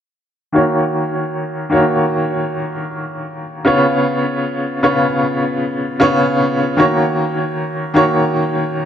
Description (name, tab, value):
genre	trip hop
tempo	77 BPM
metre	4/4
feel	swing 57% on 16ths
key	Eb minor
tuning	A4 = 440 Hz
part	bright upright piano	accompaniment	0.5-8.9 s	Db3 to Db5	-14 LUFS	equal	tremolo, low-pass filter, tape echo
room	moderate echo chamber reverb, RT60 2.5 s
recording	none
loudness	-14 LUFS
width	side -9 dB against mid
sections	0.5-8.9 A section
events	filter sweep on upright piano 0.5-8.9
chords	0.5 Ebm7; 3.7 Db7; 6.8 Ebm7